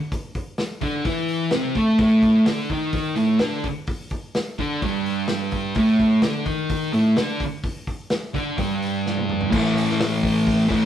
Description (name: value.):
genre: garage rock duo or trio.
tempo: 128 BPM.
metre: 4/4.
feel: straight.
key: unclear.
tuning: A4 = 440 Hz.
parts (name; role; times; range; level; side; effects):
vintage drum kit; drums; 0.1-10.8 s; crash cymbal, hi-hat, kick drum, snare drum, toms; -27 LUFS; equal; none.
thick fuzz guitar; riff; 0.8-10.9 s; G2 to A4; -19 LUFS; equal; distortion.
room: wet stone room reverb, RT60 1.1 s.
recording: rough rehearsal-room recording.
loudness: -19 LUFS.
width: side -10 dB against mid.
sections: 0.0-9.5 A section; 9.5-10.9 B section.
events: drum fill 9.1-9.5.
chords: 0.0 A5.